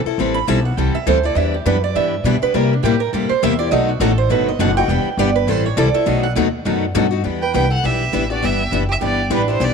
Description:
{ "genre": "acoustic string swing (jazz manouche)", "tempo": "204 BPM", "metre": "4/4", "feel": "swing 57% on 8ths", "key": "E minor", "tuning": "A4 = 440 Hz", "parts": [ { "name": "upright bass", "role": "bass", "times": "0.0-9.7 s", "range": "E1 to C3", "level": "-20 LUFS", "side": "left 1 dB", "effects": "none" }, { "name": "picked steel-string acoustic guitar", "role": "accompaniment", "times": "0.1-9.7 s", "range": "B2 to A4", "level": "-21 LUFS", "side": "left 15 dB", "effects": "none" }, { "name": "picked steel-string acoustic guitar", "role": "accompaniment", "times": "0.2-9.7 s", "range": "B2 to B4", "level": "-24 LUFS", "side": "right 12 dB", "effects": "none" }, { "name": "picked acoustic archtop guitar", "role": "second line", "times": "0.3-9.7 s", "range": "D4 to B5", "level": "-21 LUFS", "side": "right 10 dB", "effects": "none" }, { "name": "clear violin", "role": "melody", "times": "7.4-9.7 s", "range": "B4 to G5", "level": "-21 LUFS", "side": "right 2 dB", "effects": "none" } ], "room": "light reverb, small room reverb", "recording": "1960s-style stereo with parts hard left and right", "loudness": "-15 LUFS", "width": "side -6 dB against mid", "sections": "0.0-7.2 A section; 7.2-9.7 B section", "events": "steel-string acoustic guitar solo 0.0-7.2", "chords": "0.0 Am7; 1.4 Em7; 2.5 C7; 3.7 B7; 4.9 Em7; 5.5 Am7; 6.1 B7; 7.2 Em7", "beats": "| 0.19 0.48 0.78 1.07 | 1.36 1.66 1.95 2.25 | 2.54 2.83 3.13 3.42 | 3.72 4.01 4.30 4.60 | 4.89 5.19 5.48 5.78 | 6.07 6.36 6.66 6.95 | 7.25 7.54 7.84 8.13 | 8.43 8.72 9.02 9.31 | 9.61" }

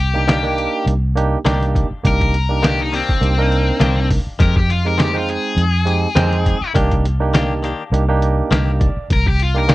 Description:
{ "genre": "straight-eighth soul blues", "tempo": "102 BPM", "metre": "4/4", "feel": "swing 55% on 16ths", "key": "C minor", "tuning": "A4 = 440 Hz", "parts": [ { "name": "overdriven electric guitar", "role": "melody", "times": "0.0-9.7 s", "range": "C4 to Bb4", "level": "-21 LUFS", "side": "left 4 dB", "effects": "none" }, { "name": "vintage muted fingered electric bass", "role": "bass", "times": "0.0-9.7 s", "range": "C2 to F2", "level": "-17 LUFS", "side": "equal", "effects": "none" }, { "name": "barky tine electric piano", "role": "accompaniment", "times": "0.1-9.7 s", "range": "Ab3 to G5", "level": "-21 LUFS", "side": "right 4 dB", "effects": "none" }, { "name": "trip hop sampler-style drum kit", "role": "drums", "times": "0.2-9.7 s", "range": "hi-hat, kick drum, snare drum", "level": "-18 LUFS", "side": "equal", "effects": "none" }, { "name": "direct-recorded clean electric guitar", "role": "stabs", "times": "0.3-9.7 s", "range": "Eb3 to G4", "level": "-26 LUFS", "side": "left 5 dB", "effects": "spring reverb" } ], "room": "little or no reverb", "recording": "dry, close 1970s-style studio recording", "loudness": "-14 LUFS", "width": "side -18 dB against mid", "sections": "0.0-9.7 A section", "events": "overdriven electric guitar solo 0.0-9.7; tine electric piano fill 8.2-9.1", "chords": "0.0 Cm9; 4.4 Fm9; 6.8 Cm9", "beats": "0.29 0.87 1.46 | 2.05 2.64 3.23 3.81 | 4.40 4.99 5.58 6.17 | 6.75 7.34 7.93 8.52 | 9.11 9.70" }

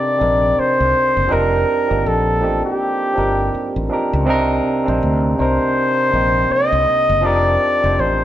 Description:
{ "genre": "R&B, neo-soul", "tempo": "81 BPM", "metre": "4/4", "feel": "swing 59% on 16ths", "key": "C dorian", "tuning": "A4 = 441 Hz", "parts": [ { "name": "warm flugelhorn", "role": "melody", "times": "0.0-8.2 s", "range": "G4 to Eb5", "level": "-16 LUFS", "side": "left 1 dB", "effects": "none" }, { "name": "barky tine electric piano", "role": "accompaniment", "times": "0.0-8.2 s", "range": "C3 to F5", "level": "-19 LUFS", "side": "right 1 dB", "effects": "overdrive" }, { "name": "mellow fretless electric bass", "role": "bass", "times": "0.2-8.2 s", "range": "F1 to D2", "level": "-21 LUFS", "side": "equal", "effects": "none" } ], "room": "wet stone room reverb, RT60 1.3 s", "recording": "band playing live in one room", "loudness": "-14 LUFS", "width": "side -12 dB against mid", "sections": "0.0-8.2 A section", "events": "none", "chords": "0.0 Cm9; 1.3 F13sus4; 4.3 Cm9; 7.2 F13sus4", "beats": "0.57 | 1.31 2.05 2.79 3.53 | 4.27 5.01 5.75 6.50 | 7.24 7.98" }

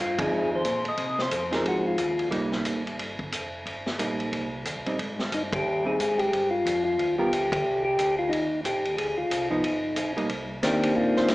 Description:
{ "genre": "soul jazz organ trio", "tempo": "180 BPM", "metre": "4/4", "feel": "swing 61% on 8ths", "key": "C minor", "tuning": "A4 = 440 Hz", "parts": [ { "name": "percussive tonewheel organ", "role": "melody", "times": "0.0-2.3, 5.3-11.3 s", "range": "Eb3 to Eb5", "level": "-25 LUFS", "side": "left 1 dB", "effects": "slow rotary speaker" }, { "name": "mellow tonewheel organ", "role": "bass", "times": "0.0-11.3 s", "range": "F1 to C3", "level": "-39 LUFS", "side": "equal", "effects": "chorus vibrato, slow rotary speaker" }, { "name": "hollow-body jazz guitar", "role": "accompaniment", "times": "0.2-7.3, 9.5-11.3 s", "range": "F3 to D5", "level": "-30 LUFS", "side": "right 1 dB", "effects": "none" }, { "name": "vintage drum kit", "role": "drums", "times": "0.2-11.3 s", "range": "hi-hat, kick drum, ride cymbal, snare drum", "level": "-30 LUFS", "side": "equal", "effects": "none" } ], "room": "wet recital hall reverb, RT60 1.5 s", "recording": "recorded in a church or concert hall, small speaker sound", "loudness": "-24 LUFS", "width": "side -19 dB against mid", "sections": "0.0-10.3 A section; 10.3-11.3 B section", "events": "band accent 0.1, 5.5, 7.5; hollow-body jazz guitar solo 10.3-11.3", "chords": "0.0 Fm7; 2.3 Cm7; 5.0 Abmaj7(no3); 6.3 G7(no3); 7.6 Cm7; 9.0 Cmadd11; 9.6 Gaug; 10.3 Cm7", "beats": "0.31 0.65 | 0.98 1.31 1.65 1.98 | 2.32 2.65 2.98 3.32 | 3.65 3.99 4.32 4.65 | 4.99 5.32 5.65 5.99 | 6.32 6.65 6.98 7.32 | 7.65 7.98 8.31 8.64 | 8.97 9.31 9.64 9.97 | 10.30 10.63 10.96 11.29" }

